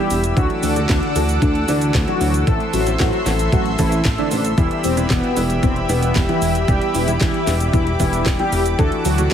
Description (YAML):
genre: italo disco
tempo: 114 BPM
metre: 4/4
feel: straight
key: E minor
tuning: A4 = 441 Hz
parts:
  - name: mellow synth brass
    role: melody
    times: 0.0-9.3 s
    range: B2 to A4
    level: -21 LUFS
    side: left 1 dB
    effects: chorus, digital delay
  - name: lush unison pad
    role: sustained chords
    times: 0.0-9.3 s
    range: G4 to E6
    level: -25 LUFS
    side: left 1 dB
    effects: chorus
  - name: clear grand piano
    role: stabs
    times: 0.0-9.3 s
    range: E3 to A4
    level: -24 LUFS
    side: right 2 dB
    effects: none
  - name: chorused synth bass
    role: bass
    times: 0.1-9.3 s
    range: E1 to D2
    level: -21 LUFS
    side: equal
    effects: tube saturation
  - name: house drum kit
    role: drums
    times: 0.1-9.3 s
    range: cabasa, handclaps, hi-hat, snare drum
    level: -26 LUFS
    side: right 1 dB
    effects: none
  - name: electronic kick drum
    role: drums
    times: 0.4-9.3 s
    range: none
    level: -20 LUFS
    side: equal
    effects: none
room: light reverb, digital ambience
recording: heavily compressed radio sound, multiband compression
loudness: -15 LUFS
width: side -9 dB against mid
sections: 0.0-9.3 A section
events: none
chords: 0.4 Dadd9; 2.5 Am; 4.6 Em; 8.8 Dadd9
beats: | 0.37 0.89 1.42 1.95 | 2.47 3.00 3.52 4.05 | 4.58 5.10 5.63 6.16 | 6.68 7.21 7.74 8.26 | 8.79 9.31